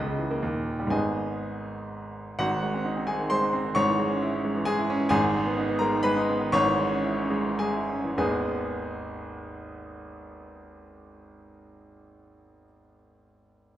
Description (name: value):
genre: classical, virtuoso piano study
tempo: 97-135 BPM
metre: 3/4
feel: rubato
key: G# minor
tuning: A4 = 440 Hz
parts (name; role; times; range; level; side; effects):
- warm grand piano; solo; 0.0-13.8 s; G#1 to D#6; -25 LUFS; equal; none
room: wet recital hall reverb, RT60 1.4 s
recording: none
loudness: -24 LUFS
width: side -12 dB against mid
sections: 0.0-2.4 A section; 2.4-8.2 B section; 8.2-11.7 C section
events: slowing down 4.4-8.2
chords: 0.4 D#; 0.9 G#m; 2.4 G#7; 3.8 C#m/G#; 5.1 G#m; 6.5 C#m/G#; 8.2 G#m